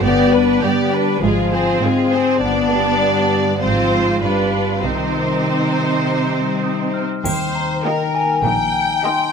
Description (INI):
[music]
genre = cinematic, playful, whimsical film cue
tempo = 100 BPM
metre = 4/4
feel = straight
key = C minor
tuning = A4 = 438 Hz
[part]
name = clear studio violin section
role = melody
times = 0.0-9.3 s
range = Ab4 to G5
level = -22 LUFS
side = left 2 dB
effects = none
[part]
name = rich studio violin section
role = second line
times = 0.0-9.3 s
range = D4 to Eb5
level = -23 LUFS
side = right 1 dB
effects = none
[part]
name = rich studio viola section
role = accompaniment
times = 0.0-9.3 s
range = Ab3 to Eb4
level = -24 LUFS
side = right 5 dB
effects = none
[part]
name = mellow French horn section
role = sustained chords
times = 0.0-7.0 s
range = Eb3 to C4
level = -19 LUFS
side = left 3 dB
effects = none
[part]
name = concert harp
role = arpeggios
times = 0.0-9.3 s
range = G2 to Eb5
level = -26 LUFS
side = left 8 dB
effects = none
[part]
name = rich studio cello section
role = bass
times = 0.0-8.9 s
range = G2 to Eb3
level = -24 LUFS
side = right 5 dB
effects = none
[part]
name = rich studio double bass section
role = bass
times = 0.0-8.9 s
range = G1 to Eb2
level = -26 LUFS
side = right 4 dB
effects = none
[part]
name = glockenspiel with rubber mallets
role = melody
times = 6.6-9.3 s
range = G5 to F6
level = -21 LUFS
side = left 4 dB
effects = none
[part]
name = triangle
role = percussion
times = 7.3-8.4 s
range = none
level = -31 LUFS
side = right 3 dB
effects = none
[sound]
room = moderate scoring stage reverb, RT60 1.4 s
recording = close, detailed microphones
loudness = -15 LUFS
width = side -6 dB against mid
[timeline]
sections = 0.0-7.3 A section; 7.3-9.3 B section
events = none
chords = 0.0 G; 1.2 Fm/Ab; 2.4 G; 3.6 Fm/Ab; 4.2 G7; 4.8 Cm; 7.3 Eb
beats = | 0.04 0.63 1.23 1.83 | 2.42 3.02 3.62 4.23 | 4.83 5.44 6.04 6.65 | 7.26 7.86 8.46 9.06